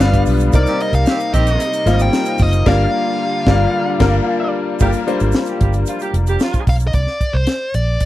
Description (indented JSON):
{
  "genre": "polished 1980s jazz-funk pop",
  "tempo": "112 BPM",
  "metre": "4/4",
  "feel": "straight",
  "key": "C minor",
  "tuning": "A4 = 440 Hz",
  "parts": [
    { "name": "dark smooth lead guitar", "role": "melody", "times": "0.0-8.1 s", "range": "C5 to G5", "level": "-21 LUFS", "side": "equal", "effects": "overdrive" },
    { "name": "clear concert grand piano", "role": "accompaniment", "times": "0.0-7.0 s", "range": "G3 to C5", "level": "-19 LUFS", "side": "left 3 dB", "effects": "ensemble chorus" },
    { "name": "clear studio string section", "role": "sustained chords", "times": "0.0-4.8 s", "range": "C3 to F4", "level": "-27 LUFS", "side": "right 2 dB", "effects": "none" },
    { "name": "vintage muted fingered electric bass", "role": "bass", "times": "0.0-8.0 s", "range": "F1 to C2", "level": "-16 LUFS", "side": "right 1 dB", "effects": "none" },
    { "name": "tight funk drum kit", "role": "drums", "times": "0.0-8.1 s", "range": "crash cymbal, hi-hat, kick drum, snare drum", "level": "-18 LUFS", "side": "equal", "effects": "none" },
    { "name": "tube shaker", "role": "percussion", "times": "0.0-6.9 s", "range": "none", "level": "-37 LUFS", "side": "right 23 dB", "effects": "none" },
    { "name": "warm horn section", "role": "second line", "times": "0.7-6.6 s", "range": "Eb3 to G4", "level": "-24 LUFS", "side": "right 4 dB", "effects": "none" }
  ],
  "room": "little or no reverb",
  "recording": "dry, close 1970s-style studio recording",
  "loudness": "-14 LUFS",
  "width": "side -15 dB against mid",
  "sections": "0.0-4.8 A section; 4.8-6.9 B section; 6.9-8.1 C section",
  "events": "band accent 2.7-4.8",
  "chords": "0.0 G7; 0.5 Cm7; 2.7 Gm7; 6.9 Csus2"
}